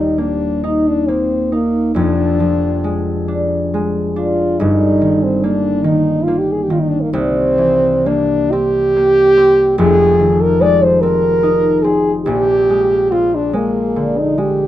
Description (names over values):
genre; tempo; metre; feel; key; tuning
classical, romantic duo for French horn and harp; 41-49 BPM (dotted quarters); 6/8; rubato; Eb major; A4 = 439 Hz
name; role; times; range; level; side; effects
mellow French horn; melody; 0.0-14.7 s; Bb3 to D5; -14 LUFS; equal; none
concert harp; accompaniment; 0.0-14.7 s; Eb1 to Bb4; -16 LUFS; equal; none
room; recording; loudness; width
little or no reverb; close, detailed microphones; -12 LUFS; side -13 dB against mid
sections
0.0-14.7 A section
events
none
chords
0.0 Eb; 2.0 Ddim/F; 4.6 Eb/G; 7.1 C7; 9.8 Fm7; 12.3 Bb9